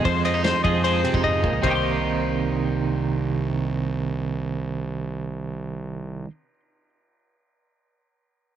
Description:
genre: math rock and midwest emo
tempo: 152 BPM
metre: 4/4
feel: straight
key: C minor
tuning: A4 = 440 Hz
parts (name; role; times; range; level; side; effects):
- twelve-string electric guitar; accompaniment; 0.0-6.3 s; F2 to Ab4; -24 LUFS; right 6 dB; tremolo, cassette tape
- twelve-string electric guitar; arpeggios; 0.0-6.3 s; C5 to C6; -24 LUFS; left 7 dB; cassette tape, tape echo
- fuzz fingered electric bass; bass; 0.0-6.2 s; C2 to F2; -29 LUFS; equal; overdrive
- loose indie drum kit; drums; 0.1-1.7 s; kick drum, ride cymbal, snare drum; -30 LUFS; equal; cassette tape
room: light reverb, studio reverb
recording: home recording on cassette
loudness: -22 LUFS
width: side -10 dB against mid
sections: 0.0-1.6 A section; 1.6-4.8 B section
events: drum fill 1.2-1.6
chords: 0.0 Fm7; 1.6 Cm7

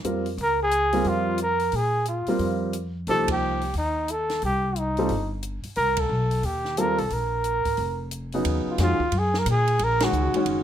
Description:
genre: modal jazz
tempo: 178 BPM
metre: 4/4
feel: swing 64% on 8ths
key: Bb dorian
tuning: A4 = 439 Hz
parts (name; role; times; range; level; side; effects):
- warm grand piano; accompaniment; 0.0-10.6 s; Db3 to Bb4; -26 LUFS; equal; none
- upright bass; bass; 0.0-10.6 s; F1 to Bb2; -28 LUFS; equal; none
- compact cocktail drum kit; drums; 0.0-10.6 s; hi-hat, kick drum, ride cymbal, snare drum; -34 LUFS; right 2 dB; none
- breathy trumpet; melody; 0.4-10.5 s; Eb4 to Bb4; -24 LUFS; equal; none
room: moderate club reverb, RT60 0.8 s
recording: none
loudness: -22 LUFS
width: side -10 dB against mid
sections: 0.0-8.5 A section; 8.5-10.6 B section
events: band accent 3.2, 5.9, 10.0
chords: 0.0 Bbm9; 3.1 Cm7; 7.1 Bb5; 8.5 Ebm11

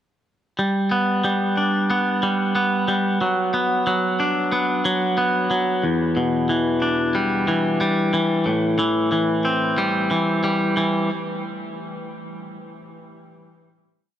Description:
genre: post-rock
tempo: 92 BPM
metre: 4/4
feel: straight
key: A dorian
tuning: A4 = 440 Hz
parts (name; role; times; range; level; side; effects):
- twangy electric guitar; solo; 0.6-11.1 s; E2 to D4; -19 LUFS; equal; tape echo
room: moderate huge ambient reverb, RT60 8.7 s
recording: none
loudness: -18 LUFS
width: side -10 dB against mid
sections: 0.6-11.1 A section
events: none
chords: 0.6 G; 3.2 Bm/F#; 5.8 Em7; 8.5 Am7

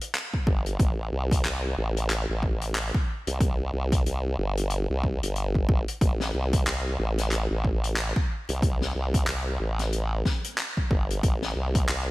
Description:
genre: glitch hop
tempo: 92 BPM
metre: 4/4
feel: swing 59% on 16ths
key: A minor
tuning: A4 = 440 Hz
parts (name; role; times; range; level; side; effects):
- vintage drum kit; drums; 0.0-12.0 s; handclaps, hi-hat, snare drum; -31 LUFS; left 1 dB; gated reverb
- electronic kick drum; drums; 0.3-11.9 s; none; -25 LUFS; equal; overdrive
- formant-sweep wobble bass; bass; 0.5-12.1 s; G1 to C2; -27 LUFS; equal; chorus
room: little or no reverb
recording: bright 1980s-style digital production, vinyl crackle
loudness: -24 LUFS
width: side -19 dB against mid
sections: 0.0-12.1 A section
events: none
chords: none

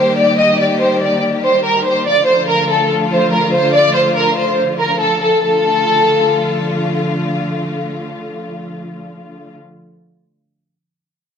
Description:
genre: hip hop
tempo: 143 BPM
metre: 4/4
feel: half-time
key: D phrygian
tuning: A4 = 438 Hz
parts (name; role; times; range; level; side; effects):
- warm studio violin section; melody; 0.0-6.6 s; A4 to Eb5; -13 LUFS; equal; low-pass filter, tape echo
- dark symphonic string section; sustained chords; 0.0-9.5 s; D3 to G4; -19 LUFS; left 1 dB; none
room: moderate digital room reverb, RT60 1.1 s, small room ambience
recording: none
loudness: -12 LUFS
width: side -7 dB against mid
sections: 0.0-5.4 A section; 5.4-8.8 B section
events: none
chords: 0.0 Eb; 2.1 Dm

